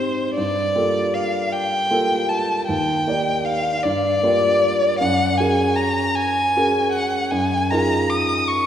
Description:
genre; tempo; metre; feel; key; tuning
classical, impressionist duo for violin and grand piano; 52 BPM (dotted quarters); 6/8; rubato; unclear; A4 = 440 Hz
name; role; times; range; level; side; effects
warm violin; melody; 0.0-8.7 s; C5 to Eb6; -20 LUFS; left 1 dB; none
warm baby grand piano; accompaniment; 0.0-8.7 s; Eb2 to D5; -21 LUFS; right 1 dB; none
room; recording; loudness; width
wet scoring stage reverb, RT60 2.0 s; heard from further back in the room; -17 LUFS; side -10 dB against mid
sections
0.0-8.7 A section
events
none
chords
0.4 Gm9; 2.7 Ebmaj7; 3.8 Gm7; 5.0 Gbadd9; 7.3 Ebmadd9/Gb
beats
| 0.37 1.53 | 2.69 3.85 | 5.01 6.17 | 7.33 8.51

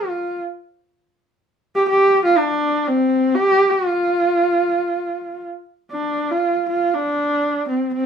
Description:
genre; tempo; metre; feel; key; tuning
mongolian traditional; 122 BPM; 4/4; straight; unclear; A4 = 440 Hz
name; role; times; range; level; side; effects
clear horsehead fiddle; solo; 0.0-8.1 s; C4 to G4; -17 LUFS; right 1 dB; none
room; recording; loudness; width
moderate studio ambience, RT60 0.5 s; band playing live in one room; -16 LUFS; side -7 dB against mid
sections
0.0-5.9 A section; 5.9-8.1 B section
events
none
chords
none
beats
| 0.04 0.54 1.03 1.52 | 2.01 2.50 2.99 3.48 | 3.97 4.46 4.96 5.45 | 5.94 6.43 6.92 7.41 | 7.90

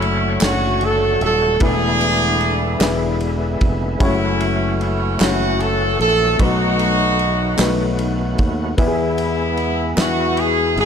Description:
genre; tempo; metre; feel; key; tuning
slow gospel; 50 BPM (dotted quarters); 6/8; straight; unclear; A4 = 438 Hz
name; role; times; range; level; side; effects
warm horn section; melody; 0.0-10.9 s; G#3 to A4; -19 LUFS; right 1 dB; slapback echo
dark concert grand piano; accompaniment; 0.0-10.9 s; B2 to C#5; -23 LUFS; left 5 dB; none
overdriven tonewheel organ; sustained chords; 0.0-10.9 s; D3 to C#5; -26 LUFS; right 1 dB; slow rotary speaker, chorus vibrato
fingered electric bass; bass; 0.0-10.9 s; D#1 to E2; -22 LUFS; equal; none
warm soul drum kit; drums; 0.0-10.9 s; kick drum, ride cymbal, snare drum; -22 LUFS; right 1 dB; none
group handclap; percussion; 0.4-10.3 s; none; -27 LUFS; right 4 dB; none
room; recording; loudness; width
light reverb; none; -15 LUFS; side -7 dB against mid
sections
0.0-10.9 A section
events
none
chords
0.0 Dmaj7/F#; 1.6 E7sus4; 2.8 E7; 4.0 F#m7; 6.4 B7; 8.8 E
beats
0.41 | 1.61 2.81 | 4.00 5.20 | 6.39 7.59 | 8.78 9.98

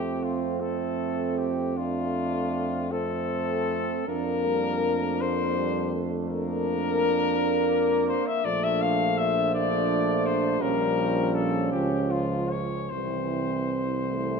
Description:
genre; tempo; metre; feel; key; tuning
classical, hymn-like piece for brass band; 49-56 BPM (dotted quarters); 12/8; rubato; unclear; A4 = 441 Hz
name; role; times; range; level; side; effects
warm flugelhorn; melody; 0.0-14.4 s; F4 to F5; -28 LUFS; left 7 dB; none
mellow French horn section; second line; 0.0-14.4 s; C4 to D4; -31 LUFS; right 11 dB; none
warm euphonium; accompaniment; 0.0-14.4 s; E3 to Bb3; -32 LUFS; left 2 dB; none
warm trombone; accompaniment; 0.0-14.4 s; E3 to D4; -33 LUFS; right 5 dB; none
warm tuba; bass; 0.0-14.4 s; Bb1 to F2; -31 LUFS; equal; none
room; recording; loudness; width
moderate concert hall reverb, RT60 2.1 s; none; -24 LUFS; side -5 dB against mid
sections
0.0-14.4 A section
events
none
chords
0.0 F; 4.1 Bb/F; 8.4 Bbmaj7; 10.6 Bbm; 12.9 C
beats
0.62 1.77 2.92 | 4.07 5.20 6.28 7.36 | 8.45 9.54 10.62 11.73 | 12.91 14.11

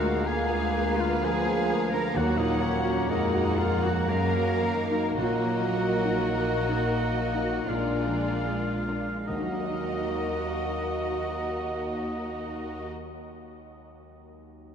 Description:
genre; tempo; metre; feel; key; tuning
classical; 36-66 BPM; 3/4; rubato; Eb minor; A4 = 440 Hz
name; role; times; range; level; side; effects
clear concert grand piano; melody; 0.0-14.7 s; D2 to Eb5; -31 LUFS; left 1 dB; none
rich studio violin section; melody; 0.0-12.9 s; D5 to Gb5; -39 LUFS; right 2 dB; none
bright clarinet; second line; 0.0-12.9 s; D5 to Gb5; -40 LUFS; equal; none
clear oboe; second line; 0.0-12.9 s; Db5 to Bb5; -36 LUFS; left 2 dB; none
warm symphonic violin section; second line; 0.0-12.9 s; Ab4 to Cb5; -39 LUFS; left 4 dB; none
wooden flute; second line; 0.0-12.9 s; Gb5 to Bb5; -39 LUFS; left 1 dB; none
clear symphonic viola section; accompaniment; 0.0-12.9 s; Gb3 to Gb4; -37 LUFS; left 3 dB; none
mellow bassoon; accompaniment; 0.0-12.9 s; Bb3; -36 LUFS; right 2 dB; none
clear French horn section; sustained chords; 0.0-12.9 s; Eb3 to Gb4; -33 LUFS; equal; none
rich symphonic cello section; bass; 0.0-12.9 s; Db4 to Bb4; -34 LUFS; right 2 dB; none
rich symphonic double bass section; bass; 0.0-12.9 s; Bb1 to Gb2; -34 LUFS; equal; none
timpani; percussion; 2.2-12.9 s; Bb2 to Eb3; -40 LUFS; right 2 dB; none
room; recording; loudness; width
wet cathedral reverb, RT60 5.7 s; in a vast, echoing space; -25 LUFS; side -7 dB against mid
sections
0.0-9.3 A section; 9.3-14.2 B section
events
slowing down 0.7-9.3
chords
0.0 Bb7/D; 2.2 Ebm; 4.1 Ebm/Gb; 5.2 Ebm/Bb; 7.7 Bb7; 9.3 Ebm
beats
0.26 1.24 | 2.17 3.09 4.10 | 5.18 6.36 7.69 | 9.28 10.95 12.60

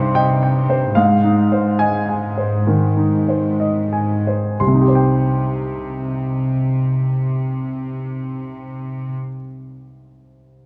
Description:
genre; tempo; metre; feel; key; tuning
cinematic; 58-76 BPM; 4/4; rubato; C minor; A4 = 441 Hz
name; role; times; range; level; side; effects
clear grand piano; accompaniment; 0.0-10.7 s; C2 to C6; -19 LUFS; equal; none
warm symphonic cello section; bass; 0.0-9.1 s; Ab2 to C3; -23 LUFS; equal; none
room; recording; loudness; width
moderate scoring stage reverb, RT60 2.0 s; dark, warm production; -18 LUFS; mono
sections
0.0-4.6 A section; 4.6-8.6 B section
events
slowing down 0.0-4.6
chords
0.0 Cm; 1.0 Ab; 4.6 Cm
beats
0.15 | 0.96 1.80 2.67 3.60 | 4.61 5.60 6.59 7.58

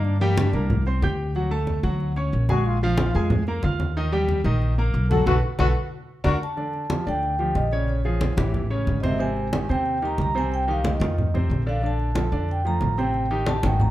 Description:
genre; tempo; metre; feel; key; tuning
Afro-Cuban jazz; 183 BPM; 4/4; straight; G minor from 6.6 s; A4 = 440 Hz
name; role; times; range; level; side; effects
warm trombone; second line; 0.0-6.3 s; Bb3 to A4; -28 LUFS; left 4 dB; none
warm baby grand piano; accompaniment; 0.0-13.9 s; C3 to G6; -27 LUFS; right 1 dB; none
upright bass; bass; 0.0-13.9 s; Ab1 to G2; -24 LUFS; equal; none
congas; percussion; 0.0-13.9 s; none; -27 LUFS; equal; none
vibraphone with soft mallets; melody; 6.4-13.9 s; Db5 to Bb5; -28 LUFS; right 1 dB; none
room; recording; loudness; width
moderate large studio reverb, RT60 1.1 s; dark, warm production; -21 LUFS; side -14 dB against mid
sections
0.0-6.6 A section; 6.6-13.9 B section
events
trombone solo 0.0-6.6; band accent 5.3-6.6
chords
0.1 Gm; 0.7 Csus2; 1.4 Dmaj7#11; 2.7 Bb5; 4.0 Eb; 5.3 B5; 5.9 Daug; 6.6 Gm9; 7.9 Bbm7; 8.5 A7; 9.2 Abmaj7; 10.5 Cm; 11.2 F5; 11.8 Bbmaj7; 13.1 Am7b5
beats
| 0.05 0.38 0.70 1.03 | 1.36 1.68 2.01 2.33 | 2.66 2.98 3.31 3.64 | 3.96 4.29 4.61 4.94 | 5.27 5.59 5.92 6.25 | 6.57 6.90 7.23 7.56 | 7.89 8.21 8.54 8.87 | 9.20 9.53 9.86 10.19 | 10.52 10.85 11.17 11.50 | 11.83 12.16 12.49 12.81 | 13.14 13.47 13.80

